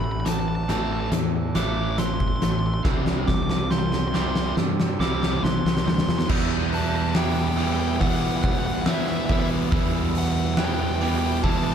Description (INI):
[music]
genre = post-rock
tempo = 70 BPM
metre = 4/4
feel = straight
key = E minor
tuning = A4 = 440 Hz
[part]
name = dark smooth lead guitar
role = melody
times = 0.0-11.7 s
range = E5 to D6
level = -31 LUFS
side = equal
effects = overdrive, tape echo
[part]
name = pedal steel guitar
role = sustained chords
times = 0.0-11.7 s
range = A3 to E5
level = -44 LUFS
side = right 4 dB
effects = none
[part]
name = glockenspiel with hard plastic mallets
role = arpeggios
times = 0.0-11.7 s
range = D6 to G6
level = -38 LUFS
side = right 8 dB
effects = tape echo
[part]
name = twangy electric guitar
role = arpeggios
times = 0.0-11.7 s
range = E2 to E4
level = -37 LUFS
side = equal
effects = none
[part]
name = cranked stack guitar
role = riff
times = 0.0-11.7 s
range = A2 to E4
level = -29 LUFS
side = left 8 dB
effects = overdrive, spring reverb
[part]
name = crunchy overdriven guitar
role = riff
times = 0.0-11.7 s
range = E2 to C4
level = -29 LUFS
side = right 13 dB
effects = none
[part]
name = fuzz fingered electric bass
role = bass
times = 0.0-11.7 s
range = A1 to E3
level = -27 LUFS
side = equal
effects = overdrive
[part]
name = oversized low-tuned drum kit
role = drums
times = 0.3-11.6 s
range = crash cymbal, hi-hat, kick drum, snare drum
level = -25 LUFS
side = equal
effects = none
[sound]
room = small room ambience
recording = dark, warm production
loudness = -21 LUFS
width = side -8 dB against mid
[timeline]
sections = 0.0-6.3 A section; 6.3-11.7 B section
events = build-up 0.0-6.3; drum fill 0.0-6.3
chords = 0.0 Am; 2.9 Cadd9; 6.3 Emadd9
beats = 0.26 1.12 1.99 | 2.85 3.71 4.58 5.44 | 6.30 7.16 8.02 8.87 | 9.73 10.59 11.45